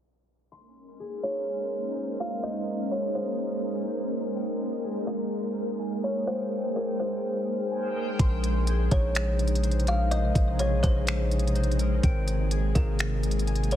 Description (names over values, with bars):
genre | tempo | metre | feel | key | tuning
hip hop, atmospheric cloud-rap | 125 BPM | 4/4 | half-time | Bb dorian | A4 = 438 Hz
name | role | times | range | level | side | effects
ethereal airy pad | sustained chords | 1.0-13.8 s | C3 to C5 | -32 LUFS | equal | ensemble chorus, built-in reverb
concert harp | arpeggios | 0.5-13.8 s | Eb4 to C6 | -37 LUFS | left 4 dB | low-pass filter, ping-pong delay
backwards swelling texture | texture | 1.0-8.2 s | Ab3 to C6 | -39 LUFS | equal | built-in reverb
kalimba | melody | 1.2-13.8 s | Bb4 to F5 | -32 LUFS | equal | low-pass filter, ping-pong delay
long sustained 808-style bass | bass | 8.2-13.8 s | Ab1 to Bb1 | -26 LUFS | equal | none
smooth R&B drum kit | drums | 8.2-13.8 s | finger snaps, hi-hat, kick drum | -26 LUFS | equal | none
room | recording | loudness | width
little or no reverb | heavily compressed radio sound, low-pass filter | -25 LUFS | side -11 dB against mid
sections
0.5-8.2 A section; 8.2-13.8 B section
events
filter sweep 0.5-8.2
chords
0.5 Bbm11; 4.4 Abmaj9; 8.2 Bbm11; 12.0 Abmaj9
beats
| 0.51 0.99 1.47 1.95 | 2.43 2.91 3.39 3.87 | 4.35 4.83 5.31 5.79 | 6.27 6.75 7.23 7.71 | 8.19 8.67 9.15 9.63 | 10.11 10.59 11.07 11.55 | 12.03 12.51 12.99 13.47